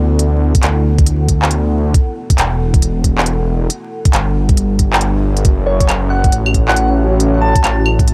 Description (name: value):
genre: future garage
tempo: 137 BPM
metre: 4/4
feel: swing 62% on 16ths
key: unclear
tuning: A4 = 444 Hz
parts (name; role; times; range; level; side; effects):
- dark analog pad; sustained chords; 0.0-8.1 s; B3 to F#5; -25 LUFS; equal; chorus, sidechain pumping
- swelling detuned saw bass; bass; 0.0-8.1 s; E1 to D2; -17 LUFS; equal; sidechain pumping
- organic electronic drum kit; drums; 0.2-8.1 s; claves, handclaps, hi-hat; -20 LUFS; equal; overdrive
- electronic kick drum; drums; 0.5-8.1 s; none; -15 LUFS; equal; none
- soft struck synth lead; melody; 5.7-7.9 s; C#5 to A5; -21 LUFS; equal; chorus, delay
room: little or no reverb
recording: vinyl crackle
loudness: -14 LUFS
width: mono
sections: 0.0-8.1 A section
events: none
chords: 0.0 Bm; 1.9 Em7; 5.4 F#m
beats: | 0.19 0.63 1.07 1.51 | 1.94 2.38 2.82 3.26 | 3.70 4.13 4.57 5.01 | 5.45 5.89 6.32 6.76 | 7.20 7.64 8.08